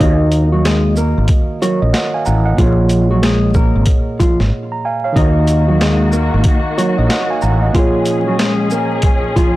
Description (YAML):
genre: hip hop, boom-bap hip-hop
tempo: 93 BPM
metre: 4/4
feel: swing 61% on 16ths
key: Eb minor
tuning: A4 = 436 Hz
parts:
  - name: mellow electric guitar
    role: melody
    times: 0.0-9.5 s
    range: F3 to Eb5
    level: -18 LUFS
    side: equal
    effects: high-pass filter, low-pass filter, digital delay
  - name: mellow tine electric piano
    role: accompaniment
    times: 0.0-9.6 s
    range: Bb2 to Bb5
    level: -19 LUFS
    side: right 2 dB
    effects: cassette tape, high-pass filter, low-pass filter
  - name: mellow fretless electric bass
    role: bass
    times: 0.0-7.7 s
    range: Ab1 to Eb2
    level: -14 LUFS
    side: equal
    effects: transformer saturation, ensemble chorus
  - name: boom bap sampler-style drum kit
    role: drums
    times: 0.0-9.5 s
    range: hi-hat, kick drum, shaker, snare drum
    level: -16 LUFS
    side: equal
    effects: none
  - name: muted studio string section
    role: stabs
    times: 5.2-9.6 s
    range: Eb3 to Ab4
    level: -21 LUFS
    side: left 2 dB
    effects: high-pass filter, low-pass filter, digital delay
room: little or no reverb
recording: blown-out, overdriven recording, vinyl crackle, overdrive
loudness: -12 LUFS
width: side -17 dB against mid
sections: 0.0-9.6 A section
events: break 4.5-5.2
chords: 0.0 Ebm; 2.6 Bbm7; 5.2 Ebm; 7.7 Bbm7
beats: | 0.00 0.65 1.29 1.94 | 2.58 3.23 3.87 4.52 | 5.16 5.81 6.46 7.10 | 7.75 8.39 9.04